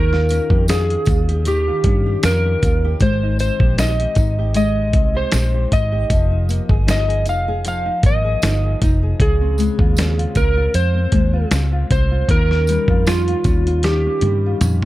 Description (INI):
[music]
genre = indie pop, bedroom pop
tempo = 78 BPM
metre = 4/4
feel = swing 55% on 16ths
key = unclear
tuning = A4 = 444 Hz
[part]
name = electric slide guitar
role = melody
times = 0.0-14.6 s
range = F4 to F5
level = -21 LUFS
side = right 1 dB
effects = wide subtle chorus
[part]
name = nylon-string guitar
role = accompaniment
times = 0.0-14.8 s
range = Db3 to Ab4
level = -25 LUFS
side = left 3 dB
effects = wide subtle chorus, warbly pitch drift
[part]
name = vintage muted fingered electric bass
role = bass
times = 0.0-14.8 s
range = F1 to G2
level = -18 LUFS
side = equal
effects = none
[part]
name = dusty soul sampler-style drum kit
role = drums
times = 0.1-14.8 s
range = hi-hat, kick drum, snare drum, toms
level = -18 LUFS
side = equal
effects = none
[part]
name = tambourine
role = percussion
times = 0.3-14.8 s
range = none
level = -36 LUFS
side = right 5 dB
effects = none
[sound]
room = little or no reverb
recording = dark, warm production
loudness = -14 LUFS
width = side -16 dB against mid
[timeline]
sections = 0.0-14.8 A section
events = drum fill 13.8-14.8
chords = 0.0 Eb9; 3.0 Abmaj7; 6.1 Fm11; 9.2 Dbmaj7; 12.3 Eb9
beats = 0.68 1.46 2.23 | 3.01 3.78 4.56 5.33 | 6.11 6.88 7.65 8.43 | 9.20 9.97 10.75 11.52 | 12.29 13.06 13.84 14.61